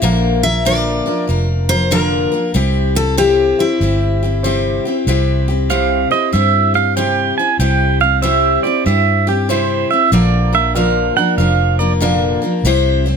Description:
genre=honky-tonk and classic country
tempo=95 BPM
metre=4/4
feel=swing 65% on 8ths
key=C mixolydian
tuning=A4 = 445 Hz
part: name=picked steel-string acoustic guitar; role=accompaniment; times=0.0-13.2 s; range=Bb2 to C5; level=-18 LUFS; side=left 4 dB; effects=none
part: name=vintage muted fingered electric bass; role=bass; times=0.0-13.2 s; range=F1 to G2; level=-17 LUFS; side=equal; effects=none
part: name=picked steel-string acoustic guitar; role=melody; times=0.4-4.8 s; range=E4 to E5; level=-18 LUFS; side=left 3 dB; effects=none
part: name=dark baby grand piano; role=accompaniment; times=0.7-12.5 s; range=D4 to D5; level=-23 LUFS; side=right 7 dB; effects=none
part: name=pedal steel guitar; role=second line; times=5.7-11.9 s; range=G4 to Ab5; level=-16 LUFS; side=right 8 dB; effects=none
room=light reverb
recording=close, detailed microphones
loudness=-12 LUFS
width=side -6 dB against mid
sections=0.0-5.1 A section; 5.1-13.2 B section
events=pedal steel guitar solo 5.1-13.2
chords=0.0 Bb; 2.5 C; 10.1 Bb; 12.6 C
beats=| 0.02 0.66 1.29 1.92 | 2.55 3.18 3.81 4.44 | 5.07 5.70 6.33 6.96 | 7.60 8.23 8.86 9.49 | 10.12 10.75 11.38 12.02 | 12.65

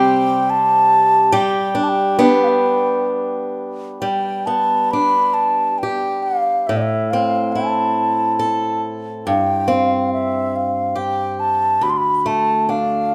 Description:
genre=celtic folk, Celtic slow air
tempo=69 BPM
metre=3/4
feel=uneven beats, rubato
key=G mixolydian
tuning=A4 = 440 Hz
part: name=baroque flute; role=melody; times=0.0-13.1 s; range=D5 to C6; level=-19 LUFS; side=equal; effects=none
part: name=picked swing-style acoustic guitar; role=accompaniment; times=0.0-13.1 s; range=D2 to A4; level=-22 LUFS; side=equal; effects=none
room=moderate recital hall reverb, RT60 1.5 s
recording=none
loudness=-18 LUFS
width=mono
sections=0.0-4.0 A section; 4.0-13.1 B section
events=none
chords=0.0 C5; 1.3 G; 6.7 Am; 9.3 C5/G; 11.8 Dm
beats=0.51 | 1.34 2.19 3.09 | 4.02 4.93 5.82 | 6.68 7.54 8.39 | 9.25 10.11 10.96 | 11.81 12.69

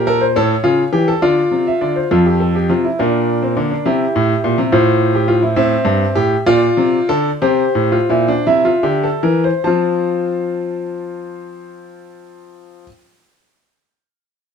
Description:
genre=classical, baroque-style 3-part fugue for grand piano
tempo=47-70 BPM (dotted quarters)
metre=6/8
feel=straight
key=F major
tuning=A4 = 440 Hz
part: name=clear grand piano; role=solo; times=0.0-12.9 s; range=F2 to A5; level=-13 LUFS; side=equal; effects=none
room=moderate stone room reverb, RT60 0.9 s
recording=minimal, uncompressed stereo recording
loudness=-13 LUFS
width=side -6 dB against mid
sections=0.0-2.1 A section; 2.1-9.6 B section; 9.6-14.5 C section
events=slowing down 4.7-9.6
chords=0.4 A7; 1.2 Dm; 2.1 F; 3.0 Bb; 3.9 C7; 4.7 F/A; 5.6 Am7; 6.5 Bbmaj9; 7.4 F; 8.5 C7; 9.6 F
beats=| 0.36 1.22 | 2.10 2.98 | 3.85 4.71 | 5.57 6.46 | 7.41 8.46 | 9.65 10.91 | 12.18

